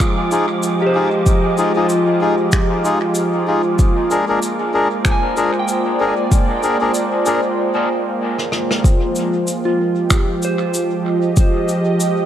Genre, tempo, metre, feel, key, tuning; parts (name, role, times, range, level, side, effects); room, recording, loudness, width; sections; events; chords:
ambient dub; 95 BPM; 4/4; swing 57% on 16ths; F dorian; A4 = 439 Hz
warm analog pad; sustained chords; 0.0-12.3 s; F3 to Eb5; -18 LUFS; right 1 dB; wide subtle chorus
cabasa, finger snaps and rim click; drums; 0.0-12.1 s; -24 LUFS; left 1 dB; dub echo
electronic kick drum; drums; 0.0-11.5 s; -15 LUFS; equal
wind-like tuned noise texture; texture; 0.0-7.6 s; D6; -31 LUFS; right 4 dB; built-in reverb
melodica; stabs; 0.3-7.4 s; D4 to Bb4; -20 LUFS; left 3 dB; dub echo
soft synth bell; arpeggios; 0.8-12.3 s; F4 to Ab5; -23 LUFS; right 2 dB; chorus, dub echo
moderate echo chamber reverb, RT60 2.2 s; -14 LUFS; side -10 dB against mid
0.0-8.8 A section; 8.8-12.3 B section
filter sweep on melodica 0.0-8.8; break 7.6-8.8; drum fill 8.4-8.8
0.0 Fm7; 3.8 Bb7; 8.8 Fm7